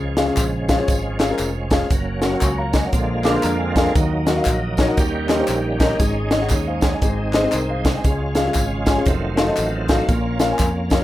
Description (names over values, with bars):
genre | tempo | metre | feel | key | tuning
uptempo gospel | 117 BPM | 4/4 | swing 62% on 8ths | Db major | A4 = 440 Hz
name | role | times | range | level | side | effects
dark upright piano | accompaniment | 0.0-11.0 s | Ab2 to Db6 | -22 LUFS | left 2 dB | plate reverb
bright tonewheel organ | sustained chords | 0.0-11.0 s | D3 to G4 | -25 LUFS | right 2 dB | fast rotary speaker, overdrive, chorus vibrato, plate reverb
fingered electric bass | bass | 0.0-11.0 s | F1 to F2 | -25 LUFS | equal | none
crisp fusion drum kit | drums | 0.2-11.0 s | hi-hat, kick drum, snare drum | -20 LUFS | equal | none
tambourine and handclaps | percussion | 0.2-11.0 s | none | -32 LUFS | left 1 dB | none
electric guitar with an envelope filter | second line | 3.2-3.9 s | C4 to D5 | -27 LUFS | right 6 dB | harmonic tremolo, plate reverb
room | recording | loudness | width
moderate small room reverb, RT60 0.5 s | rough home demo mix | -17 LUFS | side -14 dB against mid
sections
0.0-11.0 A section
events
none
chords
0.0 Db; 1.9 Gb; 2.9 Bb7; 4.0 Ebm; 5.0 Eb7; 6.0 Absus4; 7.0 Ab; 8.0 Db; 9.1 F7b9; 10.1 Bbm